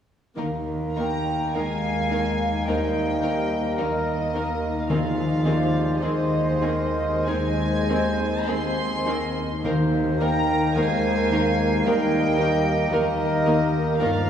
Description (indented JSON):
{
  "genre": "classical, slow romantic movement for symphony orchestra",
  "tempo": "45-56 BPM",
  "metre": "4/4",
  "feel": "rubato",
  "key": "Eb major",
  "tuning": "A4 = 440 Hz",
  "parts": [
    { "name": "dark cor anglais", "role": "second line", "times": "0.4-14.3 s", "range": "Bb4 to C5", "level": "-32 LUFS", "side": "right 2 dB", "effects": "none" },
    { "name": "warm chamber violin section", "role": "second line", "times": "0.4-14.1 s", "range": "Eb4 to Bb4", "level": "-34 LUFS", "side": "equal", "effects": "none" },
    { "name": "rich chamber viola section", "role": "accompaniment", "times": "0.4-14.1 s", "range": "Eb3 to C4", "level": "-33 LUFS", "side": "right 1 dB", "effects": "none" },
    { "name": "warm bassoon", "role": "accompaniment", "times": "0.4-14.3 s", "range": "Ab3 to Bb3", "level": "-31 LUFS", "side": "right 4 dB", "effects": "none" },
    { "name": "concert harp", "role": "arpeggios", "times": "0.4-14.3 s", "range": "G2 to Bb5", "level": "-30 LUFS", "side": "left 3 dB", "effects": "none" },
    { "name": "clear chamber double bass section", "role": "bass", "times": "0.4-14.3 s", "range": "G1 to Eb2", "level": "-30 LUFS", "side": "equal", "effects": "none" },
    { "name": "rich chamber cello section", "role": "bass", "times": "0.4-14.3 s", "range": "Eb2 to G2", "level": "-30 LUFS", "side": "right 2 dB", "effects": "none" },
    { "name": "warm studio violin section", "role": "melody", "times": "0.9-14.3 s", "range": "Eb5 to C6", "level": "-30 LUFS", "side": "left 1 dB", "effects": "none" },
    { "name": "silver concert flute", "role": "second line", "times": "1.0-14.3 s", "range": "Bb4 to Ab5", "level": "-30 LUFS", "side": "left 1 dB", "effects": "none" },
    { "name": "mellow French horn section", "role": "sustained chords", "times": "1.0-14.3 s", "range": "Eb3 to C4", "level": "-29 LUFS", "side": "left 3 dB", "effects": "none" },
    { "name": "warm clarinet", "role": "second line", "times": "2.7-14.3 s", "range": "G4 to C5", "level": "-33 LUFS", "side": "equal", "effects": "none" },
    { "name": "timpani", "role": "percussion", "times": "4.9-11.3 s", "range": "Eb3", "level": "-33 LUFS", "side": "equal", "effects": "none" }
  ],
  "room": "wet church reverb, RT60 3.5 s",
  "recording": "recorded in a church or concert hall, studio reverb",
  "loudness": "-21 LUFS",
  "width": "side -8 dB against mid",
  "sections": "0.4-14.3 A section",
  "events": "none",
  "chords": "0.4 Eb; 4.9 Ab/Eb; 9.6 Eb",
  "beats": "| 0.38 1.55 2.69 3.80 | 4.91 6.01 7.28 8.48 | 9.65 10.76 11.87 12.94 | 14.02"
}